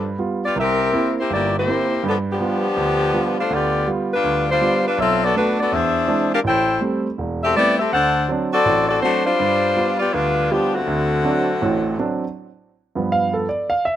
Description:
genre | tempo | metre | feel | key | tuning
jazz | 163 BPM | 4/4 | swing 63% on 8ths | G mixolydian | A4 = 441 Hz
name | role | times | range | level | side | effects
bright saxophone section | melody | 0.0-12.2 s | D3 to G5 | -18 LUFS | left 2 dB | slapback echo
warm concert grand piano | accompaniment | 0.0-14.0 s | E1 to F5 | -22 LUFS | right 3 dB | slapback echo
room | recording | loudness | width
light reverb | recorded outdoors, with no room sound | -17 LUFS | side -11 dB against mid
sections
0.0-12.4 A section; 12.4-14.0 B section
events
grand piano solo 12.4-14.0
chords
0.0 G7; 0.6 C7; 2.0 G7; 5.0 Bm7; 5.7 E7b13; 6.4 Am7; 7.9 D7; 9.4 G7; 10.9 D7; 12.4 G7

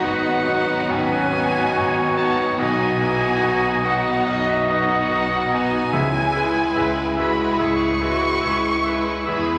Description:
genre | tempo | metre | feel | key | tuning
cinematic | 72 BPM | 4/4 | rubato | C# minor | A4 = 442 Hz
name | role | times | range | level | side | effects
warm studio violin section | melody | 0.0-9.6 s | F#4 to B4 | -32 LUFS | equal | none
warm violin | melody | 0.0-9.6 s | D#5 to C#6 | -29 LUFS | equal | none
bright large flute ensemble | second line | 0.0-9.6 s | D#5 to C#6 | -32 LUFS | equal | none
clear oboe | second line | 0.0-9.4 s | B4 to E5 | -28 LUFS | equal | none
clear studio violin section | second line | 0.0-9.6 s | D#4 to E4 | -33 LUFS | equal | none
warm clarinet | second line | 0.0-9.4 s | F#4 to G#4 | -31 LUFS | equal | none
bright grand piano | accompaniment | 0.0-9.6 s | B1 to D#5 | -29 LUFS | equal | none
warm studio viola section | accompaniment | 0.0-9.6 s | G#3 to B3 | -33 LUFS | equal | none
dark French horn section | sustained chords | 0.0-9.6 s | F#3 to D#5 | -29 LUFS | equal | none
rich studio double bass section | bass | 0.0-9.6 s | G#1 to E2 | -33 LUFS | equal | none
warm studio cello section | bass | 0.0-9.6 s | B3 to G#4 | -33 LUFS | equal | none
timpani | percussion | 0.0-0.4, 5.9-7.1 s | G#2 to C#3 | -31 LUFS | equal | none
room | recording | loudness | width
wet scoring stage reverb, RT60 1.9 s | none | -20 LUFS | mono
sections
0.0-9.6 A section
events
none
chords
0.0 G#m7; 2.6 B; 5.9 C#m7

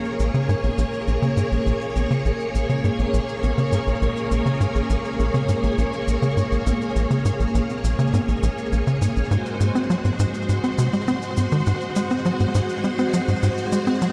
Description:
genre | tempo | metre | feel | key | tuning
ambient, sequencer-driven space music | 102 BPM | 4/4 | straight | unclear | A4 = 436 Hz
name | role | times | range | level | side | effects
string machine, full ensemble | sustained chords | 0.0-14.1 s | Ab3 to Db5 | -27 LUFS | equal | ensemble chorus
shaker and congas | percussion | 0.0-14.1 s | none | -39 LUFS | equal | overdrive, delay
tight sequencer bass | riff | 0.2-14.1 s | Bb1 to C4 | -24 LUFS | equal | delay
room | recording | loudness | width
wet huge ambient reverb, RT60 8.4 s | dark, warm production | -22 LUFS | mono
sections
0.0-14.1 A section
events
fade-in on drum 0.0-14.1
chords
0.0 Bbm7; 9.3 Ab7

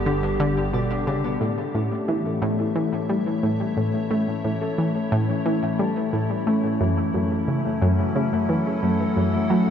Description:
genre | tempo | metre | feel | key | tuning
ambient, sequencer-driven space music | 89 BPM | 4/4 | straight | unclear | A4 = 439 Hz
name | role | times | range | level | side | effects
evolving wavetable pad | sustained chords | 0.0-9.7 s | A2 to F#5 | -30 LUFS | right 2 dB | chorus, built-in reverb
Celtic harp | arpeggios | 0.0-9.7 s | E3 to D5 | -25 LUFS | left 4 dB | auto-pan, low-pass filter, tape echo
fat analog bass | bass | 0.0-1.4 s | G1 | -32 LUFS | equal | none
analog pluck | riff | 0.1-9.7 s | F#2 to A3 | -23 LUFS | right 1 dB | chorus, tape echo
room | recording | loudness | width
wet huge ambient reverb, RT60 8.6 s | dark, warm production | -21 LUFS | side -8 dB against mid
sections
0.0-1.4 A section; 1.4-9.7 A section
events
fade-in on ambient pad 1.4-9.7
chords
0.0 G; 1.4 A; 6.8 F#m7

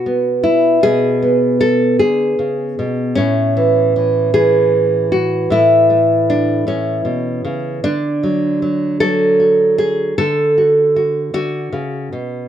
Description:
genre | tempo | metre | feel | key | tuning
folk, solo fingerstyle acoustic guitar | 51 BPM (dotted quarters) | 6/8 | straight | A major | A4 = 442 Hz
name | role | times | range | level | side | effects
nylon-string guitar | solo | 0.0-12.5 s | A2 to A4 | -13 LUFS | equal | none
room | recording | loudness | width
light reverb | none | -13 LUFS | side -10 dB against mid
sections
0.0-3.2 A section; 3.2-12.5 B section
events
none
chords
0.0 E/B; 3.2 A; 7.8 D

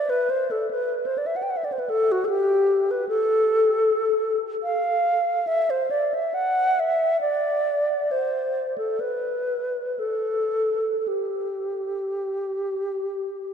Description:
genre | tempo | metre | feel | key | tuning
classical, free, expressive piece for unaccompanied alto flute | 50-78 BPM | 3/4 | rubato | G mixolydian | A4 = 441 Hz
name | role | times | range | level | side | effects
bright wooden-headed alto flute | solo | 0.0-13.5 s | F#4 to G5 | -21 LUFS | equal | none
room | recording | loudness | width
wet cathedral reverb, RT60 5.4 s | dark, warm production | -21 LUFS | side -7 dB against mid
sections
0.0-13.5 A section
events
none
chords
none

